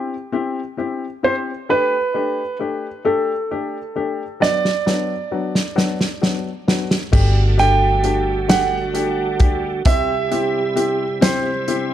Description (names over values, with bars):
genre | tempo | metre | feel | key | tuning
six-eight pop ballad | 44 BPM (dotted quarters) | 6/8 | straight | G major | A4 = 445 Hz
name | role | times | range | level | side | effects
clear baby grand piano | melody | 0.0-11.9 s | G4 to G5 | -21 LUFS | right 3 dB | digital delay
clear upright piano | accompaniment | 0.0-11.9 s | F#3 to G4 | -24 LUFS | left 5 dB | none
loose indie drum kit | drums | 4.4-11.9 s | crash cymbal, hi-hat, kick drum, snare drum | -18 LUFS | equal | none
mellow French horn section | second line | 7.1-11.9 s | F#4 to G4 | -24 LUFS | right 4 dB | none
bright tonewheel organ | sustained chords | 7.1-11.9 s | C3 to E4 | -27 LUFS | equal | overdrive, chorus vibrato, slow rotary speaker
vintage muted fingered electric bass | bass | 7.1-11.9 s | G1 to C2 | -18 LUFS | equal | none
room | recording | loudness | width
studio reverb | dark, warm production | -17 LUFS | side -11 dB against mid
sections
0.0-7.1 A section; 7.1-11.9 B section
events
drum fill 4.4-7.1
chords
0.0 C; 1.7 Gsus2; 4.4 Bm/F#; 7.1 Gsus2; 9.9 C